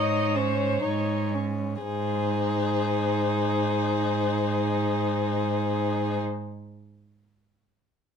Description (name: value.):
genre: classical, slow romantic movement for string quartet.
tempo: free time.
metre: none.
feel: none.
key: Ab major.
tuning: A4 = 440 Hz.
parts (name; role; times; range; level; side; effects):
rich violin; melody; 0.0-6.2 s; C5 to Db5; -30 LUFS; left 11 dB; none.
rich violin; second line; 0.0-6.2 s; Db4 to Ab4; -30 LUFS; left 4 dB; none.
rich viola; accompaniment; 0.0-6.2 s; Eb4 to Eb5; -30 LUFS; right 2 dB; none.
rich cello; bass; 0.0-6.2 s; Ab2; -29 LUFS; right 5 dB; none.
room: light reverb.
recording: none.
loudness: -24 LUFS.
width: side -7 dB against mid.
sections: 0.0-1.8 A section; 1.8-7.5 B section.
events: slowing down 0.0-1.8.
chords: 0.0 Abadd11; 1.8 Ab.